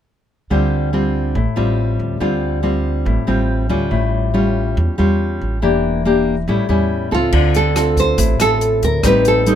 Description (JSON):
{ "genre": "bossa nova", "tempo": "141 BPM", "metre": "4/4", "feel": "straight", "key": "D minor", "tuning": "A4 = 440 Hz", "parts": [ { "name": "nylon-string guitar", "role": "accompaniment", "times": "0.5-9.6 s", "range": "A2 to A4", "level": "-17 LUFS", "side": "left 2 dB", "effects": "none" }, { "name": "upright bass", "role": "bass", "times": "0.5-9.6 s", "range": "E1 to E2", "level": "-20 LUFS", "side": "right 1 dB", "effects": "none" }, { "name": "nylon-string guitar", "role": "melody", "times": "7.1-9.6 s", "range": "F4 to C5", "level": "-16 LUFS", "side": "right 2 dB", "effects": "none" }, { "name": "compact cocktail drum kit", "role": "drums", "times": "7.3-9.6 s", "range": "crash cymbal, hi-hat, kick drum, rim click", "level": "-22 LUFS", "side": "equal", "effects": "none" } ], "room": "light reverb", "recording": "none", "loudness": "-14 LUFS", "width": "side -10 dB against mid", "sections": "0.5-7.3 A section; 7.3-9.6 B section", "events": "none", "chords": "0.5 Dm7; 3.9 A7b13; 5.6 Em7b5; 6.5 A7; 7.3 Dm7; 9.0 Am7b5" }